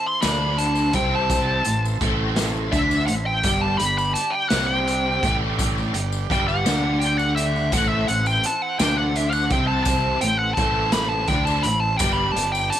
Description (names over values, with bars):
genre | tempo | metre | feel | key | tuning
psychedelic rock | 56 BPM (dotted quarters) | 6/8 | straight | A dorian | A4 = 438 Hz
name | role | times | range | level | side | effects
biting lead guitar | melody | 0.0-12.8 s | E5 to C6 | -23 LUFS | equal | wah, overdrive, tape echo
combo organ | sustained chords | 0.0-12.8 s | D3 to D5 | -33 LUFS | right 16 dB | none
biting overdriven guitar | riff | 0.2-12.7 s | G2 to D4 | -24 LUFS | equal | rotary speaker
fuzz fingered electric bass | bass | 0.2-12.7 s | G1 to D2 | -26 LUFS | equal | overdrive
raw garage drum kit | drums | 0.2-12.8 s | hi-hat, kick drum, snare drum | -26 LUFS | equal | none
tambourine | percussion | 0.2-12.7 s | none | -34 LUFS | left 20 dB | none
room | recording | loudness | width
small room ambience | 1960s-style stereo with parts hard left and right | -19 LUFS | side -11 dB against mid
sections
0.0-12.8 A section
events
lead electric guitar solo 0.0-12.8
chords
0.0 Am; 3.4 G5; 7.7 Am; 12.0 G5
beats
0.23 | 1.30 2.38 | 3.45 4.52 | 5.59 6.66 | 7.73 8.80 | 9.87 10.94 | 12.01